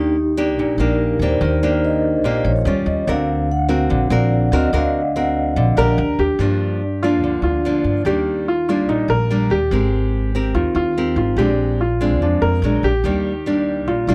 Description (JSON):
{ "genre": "bossa nova", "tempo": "144 BPM", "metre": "4/4", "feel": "straight", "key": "Eb major", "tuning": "A4 = 439 Hz", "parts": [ { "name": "nylon-string guitar", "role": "accompaniment", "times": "0.0-14.1 s", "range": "G2 to A#4", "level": "-23 LUFS", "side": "equal", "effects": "none" }, { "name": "vibraphone with medium mallets", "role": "accompaniment", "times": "0.0-6.0 s", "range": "Eb4 to F#5", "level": "-23 LUFS", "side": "equal", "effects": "none" }, { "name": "upright bass", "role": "bass", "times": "0.0-14.1 s", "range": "Ab1 to G2", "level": "-23 LUFS", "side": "equal", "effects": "none" }, { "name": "warm baby grand piano", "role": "melody", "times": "5.8-14.1 s", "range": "D4 to A#4", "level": "-23 LUFS", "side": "equal", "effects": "none" } ], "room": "little or no reverb", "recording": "dry, close 1970s-style studio recording", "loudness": "-18 LUFS", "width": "mono", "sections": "0.0-6.4 A section; 6.4-14.1 B section", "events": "vibraphone solo 0.0-6.4", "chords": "0.0 Ebmaj7; 2.7 Eb9; 3.1 D7alt; 6.0 Ebmaj7; 6.4 Gm7; 8.1 Ebmaj7; 9.7 Abmaj9; 11.4 Bb9; 12.6 Bbaug7; 13.0 Ebmaj7" }